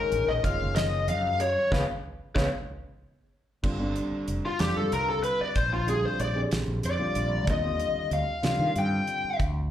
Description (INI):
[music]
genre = electric jazz fusion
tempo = 62 BPM (dotted quarters)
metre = 6/8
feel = straight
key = G minor from 3.6 s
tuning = A4 = 439 Hz
[part]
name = bluesy overdriven lead guitar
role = melody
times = 0.0-9.4 s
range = F4 to G5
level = -27 LUFS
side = left 2 dB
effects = distortion, slapback echo, plate reverb
[part]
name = dark concert grand piano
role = accompaniment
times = 0.0-9.4 s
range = D3 to Ab4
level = -34 LUFS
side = right 1 dB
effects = slapback echo
[part]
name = mellow fretless electric bass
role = bass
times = 0.1-9.7 s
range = F1 to Eb3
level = -29 LUFS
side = equal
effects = none
[part]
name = damped 70s drum kit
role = drums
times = 0.1-9.5 s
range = crash cymbal, hi-hat, kick drum, snare drum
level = -31 LUFS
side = equal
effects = none
[sound]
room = moderate club reverb, RT60 0.8 s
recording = live gig heard through the venue's PA, club reverb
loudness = -25 LUFS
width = side -11 dB against mid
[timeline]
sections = 0.0-3.6 A section; 3.6-9.7 B section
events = band accent 1.7-3.6; lead electric guitar solo 3.6-9.7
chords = 0.0 Gbmaj9; 1.7 Db7; 2.7 N.C.; 3.6 G5; 5.6 Bb9; 7.5 Ebmaj9